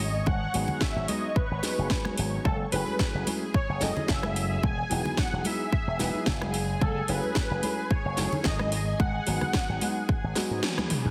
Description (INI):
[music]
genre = nu-disco, nu disco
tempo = 110 BPM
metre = 4/4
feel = swing 54% on 16ths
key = F# dorian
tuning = A4 = 440 Hz
[part]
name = unison lead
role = melody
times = 0.0-10.6 s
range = A4 to G#5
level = -36 LUFS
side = equal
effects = ensemble chorus, delay
[part]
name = lush unison pad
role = sustained chords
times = 0.0-11.1 s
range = G#4 to C#6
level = -42 LUFS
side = equal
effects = chorus, phaser, sidechain pumping
[part]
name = slap bass with an envelope filter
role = bass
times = 0.0-11.1 s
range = E1 to G#2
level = -33 LUFS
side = equal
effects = none
[part]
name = electronic kick drum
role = drums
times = 0.3-10.2 s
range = none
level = -30 LUFS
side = equal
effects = none
[part]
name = congas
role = percussion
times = 0.3-10.9 s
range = none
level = -39 LUFS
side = equal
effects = none
[part]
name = warm concert grand piano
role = accompaniment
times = 0.5-11.1 s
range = F#3 to B4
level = -36 LUFS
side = equal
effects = vintage 12-bit sampler grit, sidechain pumping, tape echo
[part]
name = house drum kit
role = drums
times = 0.5-11.1 s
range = hi-hat, rim click, snare drum, toms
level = -35 LUFS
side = equal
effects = none
[sound]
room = light reverb, digital ambience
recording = heavily compressed radio sound, multiband compression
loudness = -28 LUFS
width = mono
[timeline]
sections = 0.0-11.1 A section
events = kick drops out 10.6-11.1; drum fill 10.6-11.1; band accent 10.6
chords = 0.0 G#m7; 2.5 F#m7; 4.6 Emaj7; 6.5 F#m7; 8.7 G#m7